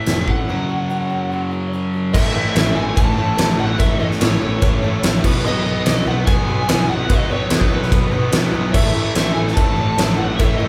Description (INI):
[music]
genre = classic rock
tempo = 146 BPM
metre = 4/4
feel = straight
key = unclear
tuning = A4 = 440 Hz
[part]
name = lead guitar through a small cranked amp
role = melody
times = 0.0-10.6 s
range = B4 to A5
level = -27 LUFS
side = equal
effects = wah, overdrive
[part]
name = picked twelve-string acoustic guitar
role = accompaniment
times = 0.0-10.7 s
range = A2 to B4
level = -35 LUFS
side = equal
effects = none
[part]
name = overdriven semi-hollow guitar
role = riff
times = 0.0-10.7 s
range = F#2 to B3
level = -25 LUFS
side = equal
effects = none
[part]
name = tight distorted guitar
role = riff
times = 0.0-10.7 s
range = F#2 to B3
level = -30 LUFS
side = equal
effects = distortion
[part]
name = growling picked electric bass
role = bass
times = 0.1-10.7 s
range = E#1 to B1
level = -27 LUFS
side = equal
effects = overdrive
[part]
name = huge arena drum kit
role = drums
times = 0.1-10.5 s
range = crash cymbal, hi-hat, kick drum, ride cymbal, snare drum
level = -20 LUFS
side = equal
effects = none
[part]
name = bright tonewheel organ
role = sustained chords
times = 2.1-10.7 s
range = none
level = barely audible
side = none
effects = none
[part]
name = cowbell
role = percussion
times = 2.1-10.7 s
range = none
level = -36 LUFS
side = equal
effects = none
[part]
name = clear upright piano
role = accompaniment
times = 8.7-10.7 s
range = A4 to E5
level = -32 LUFS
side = equal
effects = none
[sound]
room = moderate large studio reverb, RT60 0.8 s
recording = band playing live in one room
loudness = -18 LUFS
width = mono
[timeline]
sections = 0.0-2.1 A section; 2.1-10.7 B section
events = break 0.5-2.1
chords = 0.5 F#; 2.1 A; 5.2 B; 8.7 A